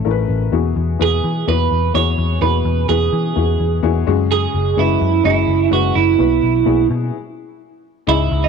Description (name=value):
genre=piano-driven pop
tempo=127 BPM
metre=4/4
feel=straight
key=unclear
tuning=A4 = 439 Hz
part: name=dark upright piano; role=accompaniment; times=0.0-8.5 s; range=G#2 to D#5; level=-21 LUFS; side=left 14 dB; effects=none
part: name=vintage muted picked electric bass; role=bass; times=0.1-8.5 s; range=F#1 to E3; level=-18 LUFS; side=left 1 dB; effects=none
part: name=twelve-string electric guitar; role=melody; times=1.0-8.5 s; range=D#4 to C#5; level=-17 LUFS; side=right 12 dB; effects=none
room=light reverb, small room reverb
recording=1960s-style stereo with parts hard left and right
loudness=-14 LUFS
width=side -6 dB against mid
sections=0.0-8.1 A section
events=stop 7.1-8.1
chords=0.0 A; 0.5 Eadd9; 4.1 F#sus2; 6.2 Bsus4